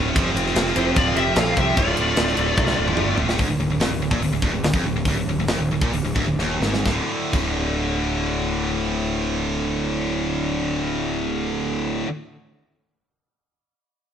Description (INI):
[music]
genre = heavy metal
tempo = 125-148 BPM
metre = 4/4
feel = straight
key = D minor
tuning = A4 = 440 Hz
[part]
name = heavy high-gain guitar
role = riff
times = 0.0-12.1 s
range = D2 to F4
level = -26 LUFS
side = left 6 dB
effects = distortion
[part]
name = high-gain distorted guitar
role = riff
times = 0.0-12.1 s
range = D2 to F3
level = -25 LUFS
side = right 6 dB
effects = distortion
[part]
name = fuzz picked electric bass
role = bass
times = 0.0-12.0 s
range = D1 to C2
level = -27 LUFS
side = equal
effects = overdrive
[part]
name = tight metal drum kit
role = drums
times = 0.2-7.5 s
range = crash cymbal, hi-hat, kick drum, ride cymbal, snare drum, toms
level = -24 LUFS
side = equal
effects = none
[part]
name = high-gain lead guitar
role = melody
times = 0.8-3.2 s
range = C5 to F5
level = -24 LUFS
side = left 2 dB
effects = distortion
[part]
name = bluesy overdriven lead guitar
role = second line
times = 0.8-3.2 s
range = E4 to A4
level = -29 LUFS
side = right 3 dB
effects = distortion
[sound]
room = moderate stone room reverb, RT60 1.1 s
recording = band playing live in one room, lossy compression artefacts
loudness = -19 LUFS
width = side -8 dB against mid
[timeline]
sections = 0.0-3.4 A section; 3.4-6.9 B section; 6.9-10.7 C section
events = drum fill 2.6-3.4, 6.4-6.9; slowing down 3.4-6.9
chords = 0.1 F5; 1.8 Dm; 6.9 D5